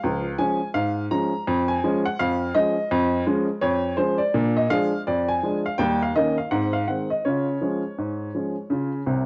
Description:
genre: ragtime piano.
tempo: 83 BPM.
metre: 2/4.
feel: swing 60% on 16ths.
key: Db major.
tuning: A4 = 440 Hz.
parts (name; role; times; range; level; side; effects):
clear upright piano; solo; 0.0-9.3 s; C2 to Bb5; -24 LUFS; equal; none.
room: moderate spring reverb, RT60 1.4 s, small room ambience.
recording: home recording on cassette, nothing above 7.8 kHz.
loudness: -24 LUFS.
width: mono.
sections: 0.0-9.3 A section.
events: upright piano fill 9.1.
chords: 0.0 Db; 1.5 Db/F; 4.3 Bb7; 5.8 Eb7; 6.5 Ab; 7.2 Db.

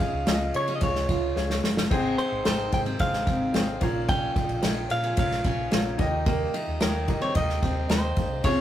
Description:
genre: piano-driven pop.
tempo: 110 BPM.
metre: 4/4.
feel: straight.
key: unclear.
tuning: A4 = 440 Hz.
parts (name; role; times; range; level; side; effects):
direct-recorded clean electric guitar; melody; 0.0-8.6 s; Bb4 to G5; -29 LUFS; equal; none.
clear baby grand piano; accompaniment; 0.0-8.6 s; Ab2 to Eb5; -31 LUFS; left 2 dB; none.
picked steel-string acoustic guitar; riff; 0.0-8.6 s; Bb3 to F4; -32 LUFS; right 1 dB; none.
unplugged drum kit; drums; 0.0-8.6 s; crash cymbal, kick drum, ride cymbal, snare drum; -26 LUFS; equal; none.
fingered electric bass; bass; 0.1-8.6 s; G1 to Eb3; -32 LUFS; equal; none.
airy breathy pad; sustained chords; 1.9-8.6 s; C3 to G4; -39 LUFS; equal; none.
room: wet studio reverb, RT60 0.5 s.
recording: rough rehearsal-room recording, tube saturation.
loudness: -23 LUFS.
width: side -11 dB against mid.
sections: 0.0-8.6 A section.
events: drum fill 1.4-1.9.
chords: 0.0 Db; 1.9 Ab; 3.8 Bbm; 6.0 Eb.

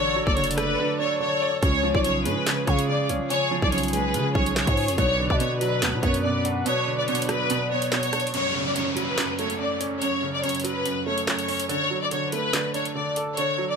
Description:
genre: hip hop, drill.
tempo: 143 BPM.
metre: 4/4.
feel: half-time.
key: F# harmonic minor.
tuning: A4 = 440 Hz.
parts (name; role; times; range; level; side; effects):
rich studio violin section; melody; 0.0-13.8 s; B4 to D5; -25 LUFS; left 2 dB; none.
soft octave-layered synth lead; second line; 0.0-8.3 s; C#5 to G#5; -32 LUFS; left 3 dB; chorus, phaser, tape echo.
warm concert grand piano; accompaniment; 0.0-13.8 s; F#2 to D5; -28 LUFS; right 4 dB; none.
warm brass ensemble; sustained chords; 0.0-8.3 s; E#3 to B4; -36 LUFS; left 2 dB; none.
growling 808-style bass; bass; 0.0-6.6 s; F#1 to C#3; -28 LUFS; equal; none.
drill drum kit; drums; 0.3-13.5 s; handclaps, hi-hat, kick drum, rim click, snare drum; -27 LUFS; equal; none.
downlifter; sound effects; 8.3-11.7 s; none; -33 LUFS; equal; none.
room: light reverb, small room reverb.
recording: none.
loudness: -22 LUFS.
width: side -6 dB against mid.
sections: 0.0-8.3 A section; 8.3-13.8 B section.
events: drums muted 0.8-1.6; kick muted 6.7-8.3; break 8.3-13.8.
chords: 0.0 D; 1.6 C#; 5.0 Bm; 8.3 F#m; 11.7 D.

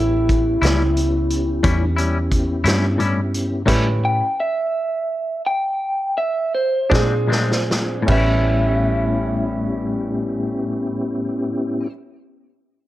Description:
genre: slow blues.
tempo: 50-59 BPM (dotted quarters).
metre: 12/8.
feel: straight.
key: A mixolydian.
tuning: A4 = 440 Hz.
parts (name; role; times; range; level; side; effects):
electric guitar through a small old amp; melody; 0.0-11.9 s; E4 to G5; -21 LUFS; right 1 dB; none.
clear upright piano; accompaniment; 0.0-11.9 s; C#4 to C5; -28 LUFS; right 3 dB; none.
mellow tonewheel organ; sustained chords; 0.0-11.9 s; D3 to Ab4; -25 LUFS; left 1 dB; slow rotary speaker, chorus vibrato.
vintage muted fingered electric bass; bass; 0.0-11.9 s; A1 to Bb2; -21 LUFS; equal; none.
vintage drum kit; drums; 0.3-8.3 s; crash cymbal, hi-hat, kick drum, snare drum; -22 LUFS; equal; none.
clean electric guitar; accompaniment; 0.6-12.0 s; A2 to E4; -23 LUFS; left 3 dB; harmonic tremolo.
room: light reverb, small room ambience.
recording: dark, warm production.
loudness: -17 LUFS.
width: side -15 dB against mid.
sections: 0.0-8.1 A section; 8.1-12.8 B section.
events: slowing down 2.3-8.1; drum fill 6.9-8.1.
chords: 0.0 A7; 6.9 Bb9; 8.1 A7.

